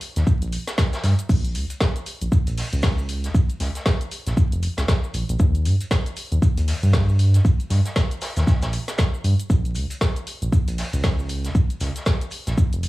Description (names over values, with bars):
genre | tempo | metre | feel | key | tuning
deep house | 117 BPM | 4/4 | swing 59% on 16ths | Bb dorian | A4 = 440 Hz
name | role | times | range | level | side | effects
deep house drum kit | drums | 0.0-12.9 s | crash cymbal, hi-hat, shaker, snare drum | -30 LUFS | equal | studio reverb
vintage drum kit | drums | 0.0-12.9 s | hi-hat, shaker, snare drum | -34 LUFS | equal | sidechain pumping on hats, high-pass filter on hats, studio reverb, high-pass filter on snare, sidechain pumping on perc, high-pass filter on perc, high-pass filter on room
round analog bass | bass | 0.2-12.9 s | F1 to G2 | -20 LUFS | equal | sidechain pumping
electronic kick drum | drums | 0.3-12.7 s | none | -19 LUFS | equal | studio reverb
room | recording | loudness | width
little or no reverb | vinyl crackle, small room ambience | -19 LUFS | side -18 dB against mid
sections
0.0-12.9 A section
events
none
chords
none